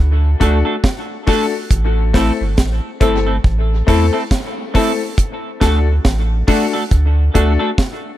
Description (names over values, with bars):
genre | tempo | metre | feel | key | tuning
dub reggae | 69 BPM | 4/4 | swing 58% on 16ths | unclear | A4 = 439 Hz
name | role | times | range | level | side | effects
warm sub bass | bass | 0.0-7.6 s | G1 to E2 | -15 LUFS | equal | none
semi-hollow electric guitar | accompaniment | 0.4-7.7 s | A3 to A4 | -22 LUFS | right 2 dB | wide subtle chorus, tape echo
clear upright piano | stabs | 0.4-7.7 s | A3 to A4 | -20 LUFS | left 7 dB | tape echo
deep reggae drum kit | drums | 0.4-8.0 s | hi-hat, kick drum, snare drum | -17 LUFS | right 1 dB | none
room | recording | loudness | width
small room ambience | none | -13 LUFS | side -13 dB against mid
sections
0.0-8.2 A section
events
none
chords
0.0 D; 1.7 Am; 5.2 D